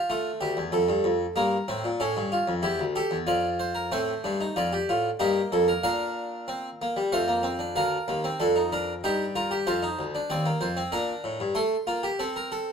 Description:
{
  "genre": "classical, baroque-style 4-part fugue for harpsichord",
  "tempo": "94 BPM",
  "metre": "3/4",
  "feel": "straight",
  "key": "D minor",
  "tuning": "A4 = 443 Hz",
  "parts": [
    { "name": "harpsichord", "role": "solo", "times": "0.0-12.7 s", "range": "D2 to C6", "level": "-24 LUFS", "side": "equal", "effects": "none" }
  ],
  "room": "light reverb",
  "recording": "minimal, uncompressed stereo recording",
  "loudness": "-24 LUFS",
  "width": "side -6 dB against mid",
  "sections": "0.0-3.9 A section; 3.9-7.8 B section; 7.8-12.7 C section",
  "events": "none",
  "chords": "0.1 Dm; 1.4 Gm; 2.0 A7; 3.3 Dm/F; 3.9 F; 5.2 Eb/G; 5.8 Fsus4/Bb; 7.1 F; 7.8 Bb/D; 9.0 Eb/G; 9.7 F7; 10.9 Bb; 11.6 F/A"
}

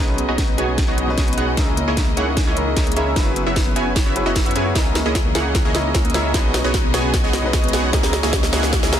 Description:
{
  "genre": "future bass",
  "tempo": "151 BPM",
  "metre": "4/4",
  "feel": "half-time",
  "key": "C# dorian",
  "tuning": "A4 = 444 Hz",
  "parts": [
    { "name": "clear baby grand piano", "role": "accompaniment", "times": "0.0-9.0 s", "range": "B2 to B4", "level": "-26 LUFS", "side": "left 2 dB", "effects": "sidechain pumping, ping-pong delay" },
    { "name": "bright studio string section", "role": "sustained chords", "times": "0.0-9.0 s", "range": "C#3 to D#5", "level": "-32 LUFS", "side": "left 2 dB", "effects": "none" },
    { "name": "thumb-piano-like synth pluck", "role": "arpeggios", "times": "0.0-9.0 s", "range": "A#3 to B4", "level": "-29 LUFS", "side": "left 2 dB", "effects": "chorus, sidechain pumping, ping-pong delay" },
    { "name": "supersaw stab", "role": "riff", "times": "0.0-9.0 s", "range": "A#3 to G#5", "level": "-22 LUFS", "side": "right 1 dB", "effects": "sidechain pumping, low-pass filter, ping-pong delay" },
    { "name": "wide detuned saw bass", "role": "bass", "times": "0.0-9.0 s", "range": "F#1 to F#2", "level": "-25 LUFS", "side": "equal", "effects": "chorus, sidechain pumping" },
    { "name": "trap drum kit", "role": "drums", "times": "0.2-9.0 s", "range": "hi-hat, snare drum", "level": "-24 LUFS", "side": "equal", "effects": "none" },
    { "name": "electronic kick drum", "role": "drums", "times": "0.4-8.8 s", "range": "none", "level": "-20 LUFS", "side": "equal", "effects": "none" },
    { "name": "riser", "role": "sound effects", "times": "6.6-9.0 s", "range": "none", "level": "-38 LUFS", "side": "left 2 dB", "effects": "none" }
  ],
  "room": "light reverb, digital ambience",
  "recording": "dense, heavily limited modern master",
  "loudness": "-16 LUFS",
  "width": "side -10 dB against mid",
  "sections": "0.0-9.0 A section",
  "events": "build-up 0.0-9.0; drum fill 0.0-9.0",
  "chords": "0.0 B69; 1.6 C#m69; 3.2 F#7sus4; 4.8 C#m69; 6.3 B69; 7.9 C#m69"
}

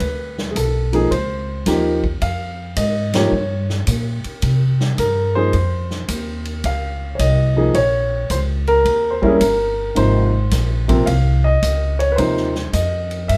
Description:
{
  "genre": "jazz piano trio",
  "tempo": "108 BPM",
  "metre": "4/4",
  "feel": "swing 67% on 8ths",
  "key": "Ab major",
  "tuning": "A4 = 440 Hz",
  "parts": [
    { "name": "warm grand piano", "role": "melody", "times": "0.0-13.4 s", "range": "C3 to F5", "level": "-21 LUFS", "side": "equal", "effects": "none" },
    { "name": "upright bass", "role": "bass", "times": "0.0-13.4 s", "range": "G1 to C3", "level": "-22 LUFS", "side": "equal", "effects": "none" },
    { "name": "swinging big-band drum kit", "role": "drums", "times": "0.0-13.4 s", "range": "hi-hat, kick drum, ride cymbal, snare drum", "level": "-29 LUFS", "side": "equal", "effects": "none" }
  ],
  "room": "light reverb",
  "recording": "none",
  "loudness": "-18 LUFS",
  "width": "mono",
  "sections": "0.0-13.4 A section",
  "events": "band accent 3.0",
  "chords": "0.0 D5; 1.1 Dbmaj9; 3.3 Gdim; 4.4 C5; 5.5 F7(no3); 7.7 Bbm; 8.9 Eb; 10.0 Ab6"
}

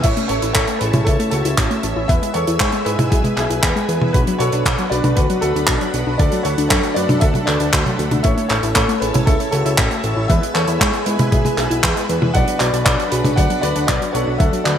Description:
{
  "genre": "italo disco",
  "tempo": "117 BPM",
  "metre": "4/4",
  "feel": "straight",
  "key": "A major",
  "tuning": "A4 = 442 Hz",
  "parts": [
    { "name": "warm baby grand piano", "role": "melody", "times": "0.0-14.8 s", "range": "E4 to F#5", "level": "-22 LUFS", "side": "left 1 dB", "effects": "digital delay" },
    { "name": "string machine, full ensemble", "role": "sustained chords", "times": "0.0-14.8 s", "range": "D4 to E6", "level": "-27 LUFS", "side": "equal", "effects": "ensemble chorus" },
    { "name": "mellow synth brass", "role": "stabs", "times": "0.0-14.8 s", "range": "A3 to E5", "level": "-26 LUFS", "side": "right 2 dB", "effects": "chorus" },
    { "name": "fat analog bass", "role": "bass", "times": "0.0-14.8 s", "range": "A1 to G#2", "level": "-22 LUFS", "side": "equal", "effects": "none" },
    { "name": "damped 70s drum kit", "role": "drums", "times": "0.0-14.8 s", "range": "crash cymbal, handclaps, hi-hat, toms", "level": "-21 LUFS", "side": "right 1 dB", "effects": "none" },
    { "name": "electronic kick drum", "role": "drums", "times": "0.0-14.5 s", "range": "none", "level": "-19 LUFS", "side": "equal", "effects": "none" },
    { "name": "wide unison pluck", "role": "arpeggios", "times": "0.2-14.8 s", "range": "F#3 to A4", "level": "-24 LUFS", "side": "left 2 dB", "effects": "vintage 12-bit sampler grit, ping-pong delay" }
  ],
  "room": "moderate plate reverb, RT60 2.2 s",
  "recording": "bright 1980s-style digital production",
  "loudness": "-15 LUFS",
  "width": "side -9 dB against mid",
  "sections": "0.0-14.8 A section",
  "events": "none",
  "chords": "0.0 A; 2.1 E; 4.1 Bm; 6.2 D; 8.2 A; 10.3 E; 12.3 Bm"
}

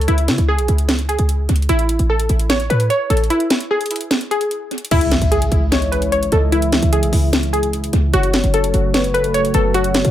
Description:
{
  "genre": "hip hop, trap",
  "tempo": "149 BPM",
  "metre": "4/4",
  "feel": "half-time",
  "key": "C# minor",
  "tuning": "A4 = 443 Hz",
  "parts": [
    { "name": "glassy wavetable pluck", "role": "melody", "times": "0.0-10.1 s", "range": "E4 to C#5", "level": "-20 LUFS", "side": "equal", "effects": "chorus, analog delay" },
    { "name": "short 808-style bass", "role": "bass", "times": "0.0-10.1 s", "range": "F#1 to C#3", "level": "-17 LUFS", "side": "equal", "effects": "none" },
    { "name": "trap drum kit", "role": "drums", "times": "0.0-10.1 s", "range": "crash cymbal, hi-hat, snare drum", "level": "-21 LUFS", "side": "equal", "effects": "analog delay" },
    { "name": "soft octave-layered synth lead", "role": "second line", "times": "4.9-10.1 s", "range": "A4 to E5", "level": "-24 LUFS", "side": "left 4 dB", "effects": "chorus, analog delay" },
    { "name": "dark analog pad", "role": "sustained chords", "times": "5.6-10.1 s", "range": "C#3 to F#4", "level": "-24 LUFS", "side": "right 1 dB", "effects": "chorus" },
    { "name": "impact", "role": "sound effects", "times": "4.9-6.5 s", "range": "none", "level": "-24 LUFS", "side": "equal", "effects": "none" }
  ],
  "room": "light reverb",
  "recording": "echo-heavy mix",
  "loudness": "-14 LUFS",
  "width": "side -12 dB against mid",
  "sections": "0.0-4.9 A section; 4.9-10.1 B section",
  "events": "break 3.3-4.9; impact 4.9-6.5",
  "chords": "0.0 C#m; 1.7 A5; 4.9 C#m; 8.1 F#m"
}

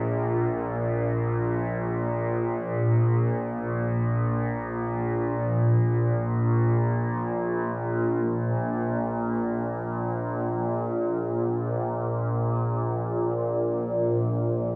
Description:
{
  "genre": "ambient",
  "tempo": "free time",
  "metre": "none",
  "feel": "none",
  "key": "unclear",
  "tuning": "A4 = 441 Hz",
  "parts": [
    { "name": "overtone-sweeping drone", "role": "solo", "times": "0.0-14.8 s", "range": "Bb1 to Bb2", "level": "-26 LUFS", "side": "equal", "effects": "chorus, built-in reverb, phaser" }
  ],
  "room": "wet huge ambient reverb, RT60 8.8 s",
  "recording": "worn, warbling old tape, cassette tape, warbly pitch drift, studio reverb",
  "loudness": "-26 LUFS",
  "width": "mono",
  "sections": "0.0-12.9 A section; 12.9-14.8 B section",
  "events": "none",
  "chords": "none"
}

